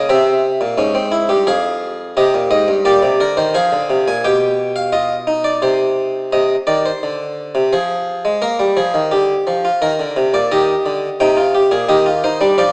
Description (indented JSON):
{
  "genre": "classical, baroque-style 3-part fugue for harpsichord",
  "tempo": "86 BPM",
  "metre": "3/4",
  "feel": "straight",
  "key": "unclear",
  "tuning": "A4 = 440 Hz",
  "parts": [
    { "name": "harpsichord", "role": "solo", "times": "0.0-12.7 s", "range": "F2 to Ab5", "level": "-13 LUFS", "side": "equal", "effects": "none" }
  ],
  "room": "wet recital hall reverb, RT60 1.6 s",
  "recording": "small speaker sound",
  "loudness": "-13 LUFS",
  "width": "side -30 dB against mid",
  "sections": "0.0-6.3 A section; 6.3-12.7 B section",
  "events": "none",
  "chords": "0.1 C7; 1.5 Fm; 2.2 Cm; 3.5 Fm; 4.2 G7/B; 5.6 Cm; 7.7 Fm; 8.4 Bb7; 9.8 Eb5; 10.5 Eb; 11.9 Cm/Eb",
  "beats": "| 0.10 0.79 1.48 | 2.16 2.85 3.55 | 4.24 4.93 5.63 | 6.33 7.03 7.73 | 8.43 9.12 9.83 | 10.52 11.21 11.90 | 12.59"
}